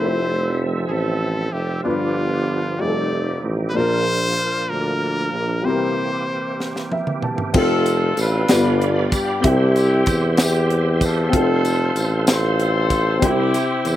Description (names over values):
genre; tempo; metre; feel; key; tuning
slow gospel; 63 BPM (dotted quarters); 6/8; straight; F major; A4 = 438 Hz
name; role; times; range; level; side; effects
brilliant trumpet; melody; 0.0-6.9 s; F4 to D5; -24 LUFS; left 1 dB; slapback echo
warm upright piano; accompaniment; 0.0-14.0 s; G2 to A5; -24 LUFS; left 2 dB; slapback echo
bright tonewheel organ; sustained chords; 0.0-14.0 s; E3 to C6; -28 LUFS; right 4 dB; fast rotary speaker, chorus vibrato
warm tuba; bass; 0.0-14.0 s; F1 to E2; -20 LUFS; equal; none
crisp fusion drum kit; drums; 6.6-14.0 s; crash cymbal, hi-hat, kick drum, snare drum, toms; -21 LUFS; equal; none
warm horn section; melody; 7.6-14.0 s; C4 to C5; -23 LUFS; left 1 dB; slapback echo
tambourine; percussion; 7.9-14.0 s; none; -32 LUFS; left 1 dB; none
room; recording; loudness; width
little or no reverb; recorded outdoors, with no room sound; -17 LUFS; side -13 dB against mid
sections
0.0-7.6 A section; 7.6-14.0 B section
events
break 5.7-7.6; upright piano fill 6.6-7.6; drum fill 6.6-7.6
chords
0.0 Fmaj7; 1.9 G7; 2.8 F9; 3.8 Bb; 5.7 C7; 7.6 F; 8.5 G7; 9.4 C; 11.3 F; 13.2 C